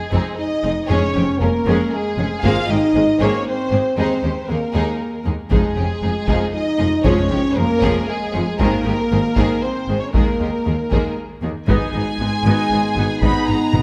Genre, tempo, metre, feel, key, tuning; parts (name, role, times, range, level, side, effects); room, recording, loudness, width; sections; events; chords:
cinematic, epic orchestral film score; 117 BPM; 3/4; straight; A4 = 441 Hz
warm symphonic violin section; melody; 0.0-13.8 s; Ab4 to B5; -27 LUFS; equal
mellow French horn section; sustained chords; 0.0-13.8 s; Ab3 to F4; -24 LUFS; equal
timpani; percussion; 0.0-1.6, 5.5-7.8 s; F2; -30 LUFS; equal
rich symphonic violin section; second line; 0.1-13.8 s; Ab3 to Ab4; -31 LUFS; equal
rich symphonic viola section; accompaniment; 0.1-13.8 s; Eb3 to D#4; -28 LUFS; equal
rich chamber cello section; bass; 0.1-13.8 s; Eb2 to Ab2; -26 LUFS; equal
rich symphonic double bass section; bass; 0.1-13.8 s; F1 to Eb2; -28 LUFS; equal
taiko ensemble; drums; 0.1-13.8 s; -24 LUFS; equal
bright trombone section; sustained chords; 11.7-13.8 s; G#3 to B3; -27 LUFS; equal
moderate scoring stage reverb, RT60 1.9 s; -19 LUFS; mono
0.0-11.7 A section; 11.7-13.8 B section
0.0 Fm7; 0.9 Db/F; 2.4 Abadd9; 4.0 Ebsus4; 5.5 Fm7; 7.1 Db/F; 8.6 Abadd9; 10.1 Ebsus4; 11.7 G#m